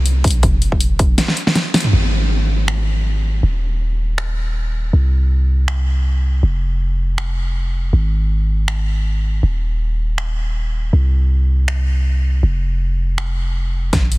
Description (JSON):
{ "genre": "future bass", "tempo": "160 BPM", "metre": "4/4", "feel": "swing 55% on 16ths, half-time", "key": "unclear", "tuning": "A4 = 440 Hz", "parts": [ { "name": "warm 808-style bass", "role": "bass", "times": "0.0-14.2 s", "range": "Eb1 to C2", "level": "-16 LUFS", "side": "equal", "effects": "sidechain pumping" }, { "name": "big-room dance drum kit", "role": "drums", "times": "0.1-14.2 s", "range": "finger snaps, hi-hat, snare drum, toms", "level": "-22 LUFS", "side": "equal", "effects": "soft clipping on snare" }, { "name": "electronic kick drum", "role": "drums", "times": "0.2-1.1, 13.9-14.0 s", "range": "none", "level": "-15 LUFS", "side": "equal", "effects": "none" } ], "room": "little or no reverb", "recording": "dense, heavily limited modern master", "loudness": "-15 LUFS", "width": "side -21 dB against mid", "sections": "0.0-1.9 A section; 1.9-13.9 B section", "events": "drop 0.0-1.9; drum fill 1.2-1.9, 13.9; band accent 1.7", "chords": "none", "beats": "0.06 | 0.43 0.81 1.18 1.56 | 1.93 2.31 2.68 3.06 | 3.43 3.81 4.18 4.56 | 4.93 5.31 5.68 6.06 | 6.43 6.81 7.18 7.56 | 7.93 8.31 8.68 9.06 | 9.43 9.81 10.18 10.56 | 10.93 11.31 11.68 12.06 | 12.43 12.81 13.18 13.56 | 13.93" }